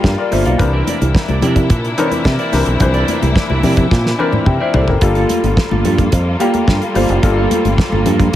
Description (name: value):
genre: disco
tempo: 108 BPM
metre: 4/4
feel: straight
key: G dorian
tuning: A4 = 440 Hz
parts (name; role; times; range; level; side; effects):
- clean electric guitar; accompaniment; 0.0-8.3 s; Bb3 to D5; -21 LUFS; right 6 dB; wide subtle chorus
- clear grand piano; accompaniment; 0.0-8.4 s; E3 to G5; -19 LUFS; left 4 dB; none
- clear studio string section; sustained chords; 0.0-8.4 s; C3 to A4; -22 LUFS; left 1 dB; none
- fingered electric bass; bass; 0.0-8.3 s; F#1 to C3; -16 LUFS; equal; none
- damped 70s drum kit; drums; 0.0-8.4 s; hi-hat, kick drum, snare drum, toms; -16 LUFS; equal; none
- congas; percussion; 0.0-8.3 s; none; -22 LUFS; left 5 dB; none
room: small room ambience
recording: none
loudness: -12 LUFS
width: side -12 dB against mid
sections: 0.0-8.4 A section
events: drum fill 3.9-5.0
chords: 0.0 Gm9; 0.6 C9; 5.0 Gm9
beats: 0.04 | 0.59 1.15 1.70 2.25 | 2.81 3.36 3.91 4.47 | 5.02 5.57 6.13 6.68 | 7.23 7.78 8.34